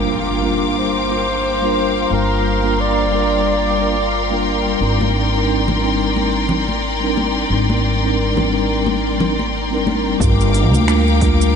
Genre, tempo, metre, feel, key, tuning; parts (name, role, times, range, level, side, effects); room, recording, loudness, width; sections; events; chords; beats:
sunset chillout; 89 BPM; 4/4; swing 57% on 16ths; G phrygian; A4 = 442 Hz
mellow tine electric piano; accompaniment; 0.0-11.6 s; G3 to Bb4; -20 LUFS; equal; medium stereo tremolo, auto-pan, low-pass filter, diffuse ambient delay
bright studio string section; sustained chords; 0.0-11.6 s; Bb4 to D6; -21 LUFS; left 3 dB
upright bass; bass; 0.0-11.6 s; G1 to D2; -20 LUFS; equal
impact; sound effects; 0.0-2.1 s; -31 LUFS; equal
warm flugelhorn; melody; 0.1-4.5 s; F4 to D5; -22 LUFS; equal; diffuse ambient delay
congas; percussion; 5.0-10.0 s; -26 LUFS; left 1 dB
deep house drum kit; drums; 10.2-11.5 s; finger snaps, hi-hat, shaker; -29 LUFS; right 2 dB; low-pass filter on perc, low-pass filter on hats, low-pass filter on snare, low-pass filter on room
electronic kick drum; drums; 10.2-11.4 s; -18 LUFS; equal
wet huge ambient reverb, RT60 8.1 s; dreamy mix soaked in reverb, nothing above 10.5 kHz; -14 LUFS; side -6 dB against mid
0.0-10.2 A section; 10.2-11.6 B section
impact 0.0-2.1; filter sweep on tine electric piano 0.0-10.2
0.0 Gm7; 4.8 Abmaj9#11; 10.2 Gm7
0.09 0.77 1.44 | 2.12 2.79 3.46 4.14 | 4.81 5.49 6.16 6.84 | 7.51 8.18 8.86 9.53 | 10.21 10.88 11.55